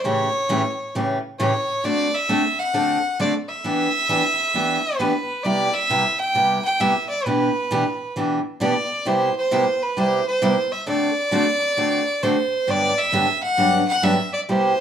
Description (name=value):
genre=country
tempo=133 BPM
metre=4/4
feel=swing 66% on 8ths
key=G major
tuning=A4 = 439 Hz
part: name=clear fiddle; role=melody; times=0.0-14.8 s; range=B4 to G5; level=-21 LUFS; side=right 1 dB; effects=none
part: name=picked steel-string acoustic guitar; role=accompaniment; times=0.0-14.7 s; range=G2 to A4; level=-21 LUFS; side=equal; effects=none
room=wet studio reverb, RT60 0.8 s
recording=none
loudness=-18 LUFS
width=side -8 dB against mid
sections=0.0-14.8 A section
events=none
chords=0.0 A7; 1.8 D9; 3.6 Em7; 5.5 Cmaj7; 7.3 Em7/B; 9.1 Cmaj7; 10.9 D7; 12.7 Gmaj7